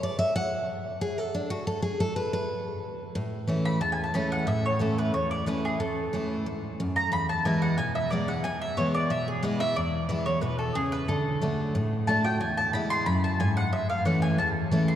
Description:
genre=bluegrass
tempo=182 BPM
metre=4/4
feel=straight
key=unclear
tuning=A4 = 436 Hz
part: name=picked steel-string acoustic guitar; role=accompaniment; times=0.0-15.0 s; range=E2 to F#5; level=-26 LUFS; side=equal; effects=none
part: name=mandolin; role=melody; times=3.7-15.0 s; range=G#4 to C6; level=-28 LUFS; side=equal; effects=none
room=wet cathedral reverb, RT60 5.6 s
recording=recorded in a church or concert hall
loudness=-25 LUFS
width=side -10 dB against mid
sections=0.0-3.2 A section; 3.2-13.7 A section; 13.7-15.0 A section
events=steel-string acoustic guitar solo 0.0-3.2; mandolin solo 3.2-15.0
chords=0.0 N.C.; 3.2 A; 7.1 E; 11.1 D; 12.4 E; 13.7 A

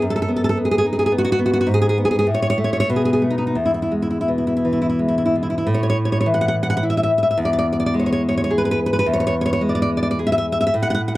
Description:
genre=romantic piece for solo classical guitar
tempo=82-113 BPM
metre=3/4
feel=rubato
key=E major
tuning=A4 = 440 Hz
part: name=nylon-string guitar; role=solo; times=0.0-11.2 s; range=E2 to F#5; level=-17 LUFS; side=equal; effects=none
room=light reverb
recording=dark, warm production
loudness=-17 LUFS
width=side -17 dB against mid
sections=0.0-5.7 A section; 5.7-11.2 B section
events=none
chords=0.0 B/F#; 1.7 G#m; 2.3 N.C.; 2.9 B7; 3.6 E; 5.7 A5; 7.4 E

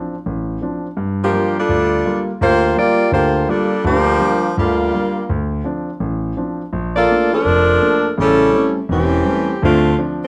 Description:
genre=jazz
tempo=167 BPM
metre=4/4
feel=swing 63% on 8ths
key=D minor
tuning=A4 = 440 Hz
part: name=warm concert grand piano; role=accompaniment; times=0.0-10.2 s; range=E1 to F4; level=-22 LUFS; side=equal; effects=none
part: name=warm saxophone section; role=melody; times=1.2-10.3 s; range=E3 to D5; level=-17 LUFS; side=equal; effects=none
room=moderate large studio reverb, RT60 0.9 s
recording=close, detailed microphones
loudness=-17 LUFS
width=mono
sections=0.0-10.3 A section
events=none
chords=0.0 Dm7; 1.0 Gm7; 5.3 Dm7; 6.7 Bbmaj7; 8.2 A7#9; 9.6 Dm7

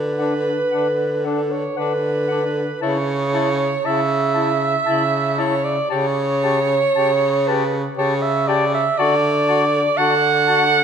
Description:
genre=classical, lyrical piece for single-reed quartet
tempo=56-61 BPM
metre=3/4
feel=rubato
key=D major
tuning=A4 = 440 Hz
part: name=clear alto saxophone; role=second line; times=0.0-10.8 s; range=A4 to F#5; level=-19 LUFS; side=right 3 dB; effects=none
part: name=warm baritone saxophone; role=bass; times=0.0-10.8 s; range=C#3 to D3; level=-22 LUFS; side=equal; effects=none
part: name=mellow clarinet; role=melody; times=0.2-10.6 s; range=F#5 to A5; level=-28 LUFS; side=left 10 dB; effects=none
part: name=mellow tenor saxophone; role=accompaniment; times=0.2-10.6 s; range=D4 to G4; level=-27 LUFS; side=left 5 dB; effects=none
room=moderate scoring stage reverb, RT60 1.9 s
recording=minimal, uncompressed stereo recording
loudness=-16 LUFS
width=side -7 dB against mid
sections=0.0-10.8 A section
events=none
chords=0.0 D; 2.8 A/C#; 5.9 A7/C#; 9.0 D

